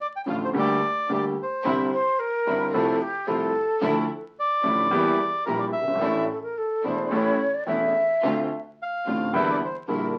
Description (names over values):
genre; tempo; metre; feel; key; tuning
tango; 109 BPM; 4/4; rubato; D minor; A4 = 440 Hz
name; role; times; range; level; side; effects
bandoneon; melody; 0.0-9.8 s; Bb4 to G5; -28 LUFS; equal; none
warm concert grand piano; accompaniment; 0.3-10.1 s; E1 to A4; -28 LUFS; equal; none
bright studio string section; stabs; 0.3-10.1 s; F3 to G4; -38 LUFS; equal; none
clear double bass; bass; 0.3-10.1 s; E1 to E2; -37 LUFS; equal; none
breathy concert flute; second line; 1.9-10.1 s; G4 to E5; -27 LUFS; equal; none
room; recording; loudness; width
moderate studio reverb, RT60 0.5 s; very old 78 rpm record, vinyl crackle; -25 LUFS; mono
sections
0.0-10.2 A section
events
none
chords
0.0 Dm; 0.5 Gm/D; 1.6 Cadd9; 2.7 Fmaj7/C; 3.8 Dmadd9; 4.9 Edim; 6.0 Asus4; 7.1 A; 8.2 Dm7; 9.3 Em7b5